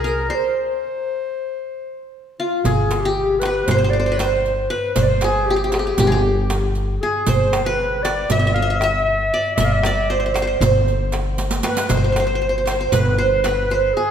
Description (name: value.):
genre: Turkish makam ensemble.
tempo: 234 BPM (eighths).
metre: 9/8.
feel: straight.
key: G makam hicaz.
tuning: A4 = 441 Hz.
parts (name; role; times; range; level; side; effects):
qanun; melody; 0.0-14.1 s; F4 to E5-40c; -20 LUFS; right 2 dB; none.
dark clarinet; second line; 0.0-14.1 s; F4 to F5; -23 LUFS; left 4 dB; none.
upright bass; bass; 0.0-13.9 s; G1 to C2; -22 LUFS; equal; none.
riq; percussion; 0.1-13.8 s; none; -29 LUFS; right 4 dB; none.
darbuka; percussion; 2.7-13.6 s; none; -25 LUFS; right 2 dB; none.
room: moderate scoring stage reverb, RT60 2.0 s.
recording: none.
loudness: -16 LUFS.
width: side -8 dB against mid.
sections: 0.0-2.6 A section; 2.6-14.1 B section.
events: break 0.3-2.6; drum fill 11.4-11.9.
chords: none.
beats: 0.07 | 0.33 0.59 0.85 1.10 1.36 1.62 1.88 2.13 2.39 | 2.65 2.90 3.16 3.42 3.68 3.93 4.19 4.45 4.71 | 4.96 5.22 5.48 5.73 5.99 6.25 6.50 6.76 7.02 | 7.28 7.53 7.79 8.05 8.30 8.56 8.82 9.07 9.33 | 9.59 9.84 10.10 10.36 10.61 10.87 11.13 11.38 11.64 | 11.90 12.15 12.41 12.67 12.93 13.18 13.44 13.70 13.95.